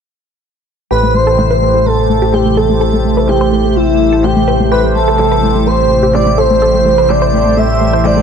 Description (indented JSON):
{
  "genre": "progressive house",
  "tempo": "126 BPM",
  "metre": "4/4",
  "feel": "straight",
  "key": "A minor",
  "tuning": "A4 = 439 Hz",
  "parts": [
    { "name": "expressive synth lead", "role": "melody", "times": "0.9-8.2 s", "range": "E4 to E5", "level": "-14 LUFS", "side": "equal", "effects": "wide subtle chorus, dub echo" },
    { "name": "airy dreamy lead", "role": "second line", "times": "0.9-8.2 s", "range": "E4 to E5", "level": "-20 LUFS", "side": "right 1 dB", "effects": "chorus, dub echo" },
    { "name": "airy breathy pad", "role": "sustained chords", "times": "1.1-8.2 s", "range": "C3 to E4", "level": "-18 LUFS", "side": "right 2 dB", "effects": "chorus, phaser, vintage 12-bit sampler grit" },
    { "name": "wide unison pluck", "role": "arpeggios", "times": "0.9-8.2 s", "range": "A3 to C5", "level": "-18 LUFS", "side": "equal", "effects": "cassette tape, dub echo" },
    { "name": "soft supersaw", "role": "stabs", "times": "0.9-8.2 s", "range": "A2 to C5", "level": "-16 LUFS", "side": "left 1 dB", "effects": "low-pass filter, dub echo" },
    { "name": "round analog bass", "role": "bass", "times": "0.9-8.2 s", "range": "A1", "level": "-17 LUFS", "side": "equal", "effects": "none" },
    { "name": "electronic handclaps", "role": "drums", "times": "1.4-8.1 s", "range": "none", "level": "-26 LUFS", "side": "left 1 dB", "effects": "none" }
  ],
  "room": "moderate recital hall reverb, RT60 1.2 s, digital ambience",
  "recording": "none",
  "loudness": "-9 LUFS",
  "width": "side -7 dB against mid",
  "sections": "0.9-8.2 A section",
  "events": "filter sweep on synth pluck 0.9-8.2; filter sweep on supersaw synth 0.9-8.2",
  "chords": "0.9 Am7",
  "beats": "| 0.91 1.38 1.86 2.33 | 2.81 3.29 3.76 4.24 | 4.72 5.19 5.67 6.14 | 6.62 7.10 7.57 8.05"
}